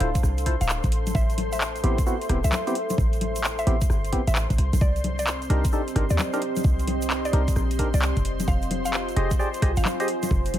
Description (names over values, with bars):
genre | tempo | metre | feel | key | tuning
UK garage, two-step garage | 131 BPM | 4/4 | swing 65% on 16ths | unclear | A4 = 441 Hz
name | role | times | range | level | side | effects
mallet-like synth pluck | melody | 0.0-10.0 s | D5 to F5 | -33 LUFS | left 1 dB | chorus, ping-pong delay
warm analog pad | sustained chords | 0.0-10.6 s | C5 to C6 | -36 LUFS | left 1 dB | chorus, sidechain pumping
percussive organ stab | stabs | 0.0-10.1 s | B3 to Eb5 | -30 LUFS | equal | chorus, ping-pong delay
short 808-style bass | bass | 0.0-10.6 s | D1 to Eb2 | -24 LUFS | equal | sidechain pumping
garage drum kit | drums | 0.0-10.6 s | congas, handclaps, hi-hat, rim click | -30 LUFS | left 1 dB | none
deep dark ambient pad | texture | 0.0-10.6 s | C4 to C6 | -31 LUFS | equal | chorus, built-in reverb, sidechain pumping
electronic kick drum | drums | 0.2-10.4 s | none | -25 LUFS | equal | none
tube shaker | percussion | 0.2-10.5 s | none | -40 LUFS | right 6 dB | none
room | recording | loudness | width
digital ambience | none | -21 LUFS | side -12 dB against mid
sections
0.0-10.6 A section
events
none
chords
0.0 Dm9; 0.9 Am9; 4.6 Cm9; 8.2 Fm9